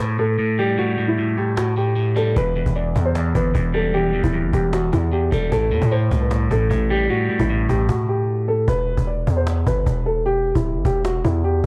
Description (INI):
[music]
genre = hip hop, trap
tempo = 152 BPM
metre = 4/4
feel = half-time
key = E minor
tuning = A4 = 440 Hz
[part]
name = electric guitar at the edge of break-up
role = accompaniment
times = 0.0-8.7 s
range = E2 to G3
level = -24 LUFS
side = equal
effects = phaser, low-pass filter
[part]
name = dark concert grand piano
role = melody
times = 0.2-11.7 s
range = E4 to D5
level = -25 LUFS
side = equal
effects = low-pass filter, analog delay
[part]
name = cajon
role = drums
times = 0.2-11.7 s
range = none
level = -28 LUFS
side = equal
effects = none
[part]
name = distorted 808-style bass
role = bass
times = 2.4-11.7 s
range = D1 to A2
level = -24 LUFS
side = equal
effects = distortion
[sound]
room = small room ambience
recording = dry, gritty hardware recording, cassette tape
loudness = -20 LUFS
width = mono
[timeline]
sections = 0.0-8.7 A section; 8.7-11.7 B section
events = break 0.0-2.4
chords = 0.0 A7(no3); 2.4 Em; 5.5 A7(no3); 8.7 E5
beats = 0.39 | 0.78 1.18 1.57 1.97 | 2.36 2.76 3.15 3.55 | 3.94 4.34 4.73 5.13 | 5.52 5.92 6.31 6.71 | 7.10 7.50 7.89 8.28 | 8.68 9.07 9.47 9.86 | 10.26 10.65 11.05 11.44